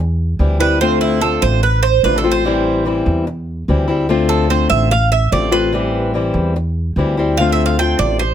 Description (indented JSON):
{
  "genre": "latin",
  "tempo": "146 BPM",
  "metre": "4/4",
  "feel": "straight",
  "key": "A minor",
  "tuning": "A4 = 440 Hz",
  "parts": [
    { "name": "fingerpicked acoustic archtop guitar", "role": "accompaniment", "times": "0.0-8.2 s", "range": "D3 to F4", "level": "-17 LUFS", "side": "left 4 dB", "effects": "none" },
    { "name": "upright bass", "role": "bass", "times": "0.0-8.3 s", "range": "A1 to E2", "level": "-18 LUFS", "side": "equal", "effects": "none" },
    { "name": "Cuban tres", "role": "arpeggios", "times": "0.6-8.3 s", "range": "E4 to G5", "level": "-17 LUFS", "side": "right 6 dB", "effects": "none" }
  ],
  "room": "little or no reverb",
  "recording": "close, detailed microphones",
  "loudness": "-13 LUFS",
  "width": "side -10 dB against mid",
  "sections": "0.0-8.3 A section",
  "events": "Cuban tres solo 0.0-8.3",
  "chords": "0.0 Am7 (rootless); 0.8 Dm7; 2.5 Am7; 4.1 Dm7; 5.7 Am7; 7.4 Dm7",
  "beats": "0.40 | 0.81 1.22 1.63 2.04 | 2.45 2.86 3.27 3.68 | 4.09 4.50 4.91 5.32 | 5.73 6.14 6.55 6.96 | 7.38 7.79 8.20"
}